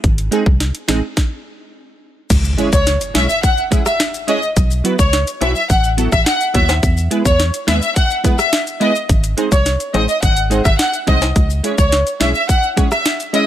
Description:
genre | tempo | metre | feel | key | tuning
dancehall | 106 BPM | 4/4 | straight | C# minor | A4 = 444 Hz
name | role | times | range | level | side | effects
organ-like FM bass | bass | 0.0-12.3 s | G#1 to E2 | -17 LUFS | equal | none
island pop drum kit | drums | 0.0-13.5 s | crash cymbal, hi-hat, kick drum, rim click, snare drum | -16 LUFS | equal | overdrive
wavetable chord stab | accompaniment | 0.3-13.5 s | F#3 to E5 | -19 LUFS | right 2 dB | sidechain pumping
maracas and timbales | percussion | 2.3-13.3 s | none | -26 LUFS | left 6 dB | none
impact | sound effects | 2.3-4.6 s | none | -27 LUFS | equal | none
warm studio violin section | melody | 2.7-13.5 s | C#5 to F#5 | -17 LUFS | left 1 dB | digital delay
room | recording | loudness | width
little or no reverb | none | -13 LUFS | side -11 dB against mid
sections
0.0-2.3 A section; 2.3-13.5 B section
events
stop 1.2-2.3; impact 2.3-4.6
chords
0.0 G#; 2.3 C#m; 4.6 Bsus4; 6.8 E; 9.1 G#; 11.4 C#m

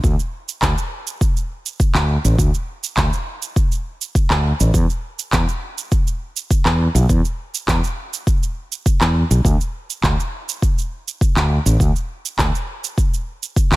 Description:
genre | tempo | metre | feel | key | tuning
organic downtempo | 102 BPM | 4/4 | straight | unclear | A4 = 440 Hz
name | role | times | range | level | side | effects
fretless electric bass | bass | 0.0-13.8 s | A1 to E2 | -16 LUFS | equal | sidechain pumping
electronic kick drum | drums | 0.0-13.7 s | none | -18 LUFS | equal | none
electronic shaker and handclaps | drums | 0.0-13.8 s | none | -23 LUFS | right 2 dB | none
room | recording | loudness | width
little or no reverb | none | -17 LUFS | side -18 dB against mid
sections
0.0-13.8 A section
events
none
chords
none

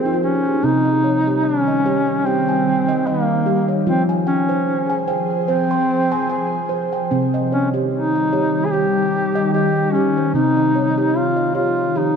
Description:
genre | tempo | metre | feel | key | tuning
world meditative, meditative tuned percussion | 74 BPM | 4/4 | swing 55% on 16ths | unclear | A4 = 439 Hz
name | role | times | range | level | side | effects
warm duduk | melody | 0.0-12.2 s | Bb3 to Ab4 | -19 LUFS | equal | ping-pong delay
ethereal airy pad | sustained chords | 0.0-12.2 s | Eb3 to C5 | -23 LUFS | equal | ensemble chorus, built-in reverb, phaser
steel tongue drum | arpeggios | 0.0-12.2 s | C3 to C6 | -21 LUFS | right 1 dB | ping-pong delay
room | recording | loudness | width
wet echo chamber reverb, RT60 2.0 s, studio ambience | dark, warm production | -16 LUFS | side -6 dB against mid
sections
0.6-12.2 A section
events
steel tongue drum fill 0.0-0.6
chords
0.0 Fm; 0.6 Cm; 3.9 Fm; 7.1 Cm

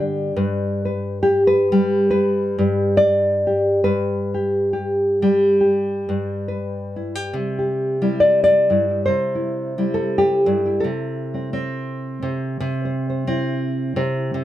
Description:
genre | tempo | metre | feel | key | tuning
folk, solo fingerstyle acoustic guitar | 69 BPM | 4/4 | swing 56% on 8ths | C major | A4 = 445 Hz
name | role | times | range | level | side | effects
nylon-string guitar | solo | 0.0-14.4 s | G2 to D5 | -18 LUFS | equal | none
room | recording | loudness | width
little or no reverb | none | -17 LUFS | side -13 dB against mid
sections
0.0-7.3 A section; 7.3-14.4 B section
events
none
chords
0.0 G; 7.3 C; 10.8 Am/C

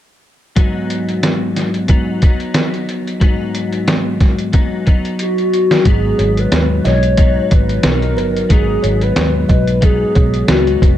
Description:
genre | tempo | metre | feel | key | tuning
indie pop, bedroom pop | 91 BPM | 4/4 | swing 55% on 16ths | G# minor | A4 = 440 Hz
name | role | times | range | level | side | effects
clean electric guitar | accompaniment | 0.6-11.0 s | G#2 to D#4 | -19 LUFS | left 2 dB | analog chorus, warbly pitch drift
lo-fi sampler-style drum kit | drums | 0.6-11.0 s | hi-hat, kick drum, snare drum | -14 LUFS | equal | vintage 12-bit sampler grit
warbly nostalgic lead | melody | 5.2-11.0 s | F#4 to C#5 | -17 LUFS | left 1 dB | lush chorus, analog delay
vintage muted fingered electric bass | bass | 5.9-11.0 s | E#1 to D#2 | -17 LUFS | equal | none
kalimba | second line | 6.2-11.0 s | B4 to D#5 | -26 LUFS | right 7 dB | wide subtle chorus, analog delay
room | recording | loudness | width
light reverb | dark, warm production | -12 LUFS | side -12 dB against mid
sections
0.6-5.9 A section; 5.9-11.0 B section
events
drum fill 5.2-5.9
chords
0.6 G#m7

